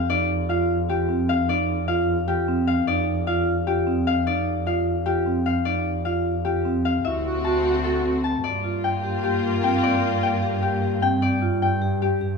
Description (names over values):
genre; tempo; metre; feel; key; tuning
classical, minimalist pattern music; 302 BPM (eighths); 7/8; straight; G minor from 8.4 s; A4 = 438 Hz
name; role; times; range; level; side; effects
Celtic harp; melody; 0.0-12.4 s; G4 to A5; -25 LUFS; left 8 dB; none
warm double bass; bass; 0.0-12.4 s; D2 to G2; -27 LUFS; right 3 dB; none
vibraphone with medium mallets; arpeggios; 0.1-12.4 s; C4 to G4; -25 LUFS; right 2 dB; none
mellow clarinet; second line; 7.0-11.0 s; F4 to F#4; -30 LUFS; right 2 dB; none
clear studio string section; sustained chords; 7.0-11.0 s; Bb3 to F#4; -28 LUFS; left 3 dB; none
room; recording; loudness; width
moderate recital hall reverb, RT60 1.5 s; small room ambience; -20 LUFS; side -4 dB against mid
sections
0.0-8.4 A section; 8.4-12.4 B section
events
none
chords
0.0 F7sus2; 7.0 D7; 8.4 Gm7